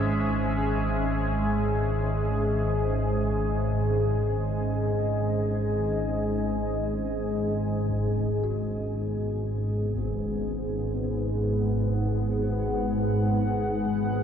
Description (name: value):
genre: dark ambient drone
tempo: free time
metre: none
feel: none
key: G# minor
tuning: A4 = 442 Hz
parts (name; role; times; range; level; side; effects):
- deep dark ambient pad; sustained chords; 0.0-14.2 s; G#3 to F#5; -29 LUFS; equal; chorus, built-in reverb, shimmer reverb
- dark detuned synth bell; arpeggios; 0.0-14.2 s; C#4 to F#4; -41 LUFS; equal; none
- organ-like drone; drone; 0.0-14.2 s; G#1 to G#2; -26 LUFS; equal; ensemble chorus, built-in reverb
- impact; percussion; 7.9-10.1 s; none; -43 LUFS; left 1 dB; none
room: wet huge ambient reverb, RT60 6.9 s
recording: dark, warm production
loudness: -24 LUFS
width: side -8 dB against mid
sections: 0.0-7.9 A section; 7.9-14.2 B section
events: filter sweep on synth drone 7.9-14.2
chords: 0.0 C#m/G#; 7.9 G#m7